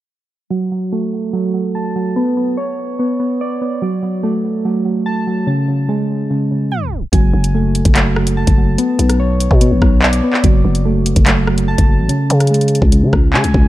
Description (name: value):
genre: hip hop, drill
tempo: 145 BPM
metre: 4/4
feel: half-time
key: F# minor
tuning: A4 = 441 Hz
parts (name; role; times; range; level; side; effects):
- soft electric-piano-like synth keys; arpeggios; 0.5-13.7 s; C#3 to A5; -16 LUFS; right 1 dB; chorus, low-pass filter, tape echo
- growling 808-style bass; bass; 7.1-13.7 s; F#1 to C#3; -15 LUFS; equal; none
- drill drum kit; drums; 7.1-13.6 s; handclaps, hi-hat, kick drum, rim click; -14 LUFS; equal; none
room: little or no reverb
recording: echo-heavy mix, tape stop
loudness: -13 LUFS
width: side -15 dB against mid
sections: 0.5-7.1 A section; 7.1-13.7 B section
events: filter sweep on synth keys 0.5-7.1; tape stop 6.7-7.1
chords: 0.5 F#m; 2.2 Bmadd9; 3.8 F#m; 5.5 C#5; 7.1 F#m; 8.8 Bmadd9; 10.4 F#m; 12.1 C#5